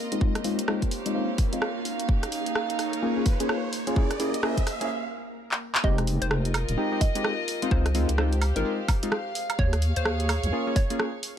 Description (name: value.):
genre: UK garage, two-step garage.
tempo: 128 BPM.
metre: 4/4.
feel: swing 61% on 16ths.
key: F minor.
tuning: A4 = 439 Hz.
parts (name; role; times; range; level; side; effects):
ethereal airy pad; sustained chords; 0.0-5.8 s; Bb3 to Bb4; -37 LUFS; equal; ensemble chorus, built-in reverb, sidechain pumping.
riser; sound effects; 0.4-4.9 s; none; -37 LUFS; right 2 dB; none.
dark studio string section; texture; 0.0-11.4 s; Db4 to F5; -33 LUFS; right 2 dB; sidechain pumping.
deep mellow chord stab; stabs; 0.1-11.1 s; Ab3 to Ab4; -29 LUFS; left 1 dB; chorus, tape echo.
garage drum kit; drums; 0.1-11.3 s; handclaps, hi-hat, rim click, woodblock; -29 LUFS; right 1 dB; high-pass filter on snare, high-pass filter on hats, high-pass filter on perc.
electronic kick drum; drums; 0.2-10.9 s; none; -24 LUFS; equal; none.
hollow square pluck; melody; 5.8-10.9 s; Bb4 to Eb5; -35 LUFS; equal; chorus, tape echo.
deep soft wobble bass; bass; 5.8-10.5 s; Eb1 to Eb2; -25 LUFS; equal; chorus, tube saturation.
room: light reverb.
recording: none.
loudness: -24 LUFS.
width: side -9 dB against mid.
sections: 0.0-5.8 A section; 5.8-11.4 B section.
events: build-up 0.0-5.8; filter sweep on synth stab 0.0-5.8; filter sweep on ambient pad 0.0-5.8; riser 0.4-4.9; break 4.9-5.8; drum fill 5.5-5.8; drop 5.8-11.4.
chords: 0.0 Dbmaj9; 1.9 Eb9sus4; 4.0 C7b9b13; 5.8 Fm9; 7.5 Dbmaj9; 9.4 Eb9sus4.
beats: | 0.21 0.68 1.15 1.62 | 2.09 2.56 3.03 3.49 | 3.96 4.43 4.90 5.37 | 5.84 6.31 6.78 7.24 | 7.71 8.18 8.65 9.12 | 9.59 10.06 10.53 10.99.